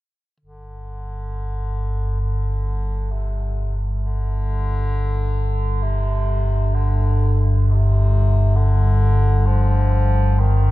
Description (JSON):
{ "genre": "dark ambient drone", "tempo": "free time", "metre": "none", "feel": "none", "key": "unclear", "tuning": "A4 = 440 Hz", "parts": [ { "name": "clear bass clarinet", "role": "melody", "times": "0.4-10.7 s", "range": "C3 to F3", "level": "-28 LUFS", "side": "left 2 dB", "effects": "tape echo" }, { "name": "deep rumbling drone", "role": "drone", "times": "0.7-10.7 s", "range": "G1 to G2", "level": "-18 LUFS", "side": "equal", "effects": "built-in reverb, lush chorus" } ], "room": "moderate huge ambient reverb, RT60 7.6 s", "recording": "none", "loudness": "-17 LUFS", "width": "side -17 dB against mid", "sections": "0.4-10.7 A section", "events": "fade-in on bass clarinet 0.4-10.7", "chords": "none", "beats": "free time" }